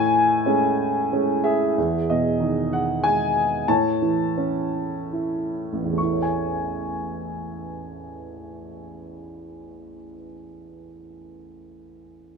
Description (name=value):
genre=classical, lyrical solo piano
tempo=66-97 BPM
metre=3/4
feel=rubato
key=A lydian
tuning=A4 = 440 Hz
part: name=warm baby grand piano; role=solo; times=0.0-12.4 s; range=A1 to C#6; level=-22 LUFS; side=equal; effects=none
room=light reverb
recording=minimal, uncompressed stereo recording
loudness=-20 LUFS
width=side -5 dB against mid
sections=0.0-1.8 A section; 1.8-6.0 B section; 6.0-11.2 C section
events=slowing down 1.8-6.0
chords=0.0 Amaj7; 1.8 Emaj7; 3.7 A; 6.0 Amaj7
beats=0.46 1.11 | 1.77 2.40 3.03 | 3.68 4.36 5.12 | 5.98 6.87 7.73 | 8.59 9.46 10.34